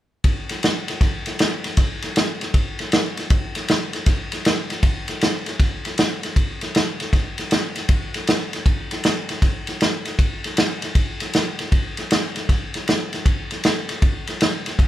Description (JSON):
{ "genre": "blues", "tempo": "157 BPM", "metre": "4/4", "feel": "swing 65% on 8ths", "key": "none", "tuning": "none", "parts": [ { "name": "vintage drum kit", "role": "drums", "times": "0.2-14.9 s", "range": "kick drum, ride cymbal, snare drum", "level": "-19 LUFS", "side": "equal", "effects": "none" } ], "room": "moderate studio reverb, RT60 0.8 s", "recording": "band playing live in one room", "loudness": "-19 LUFS", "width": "side -13 dB against mid", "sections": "0.2-14.9 A section", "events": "none", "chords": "none" }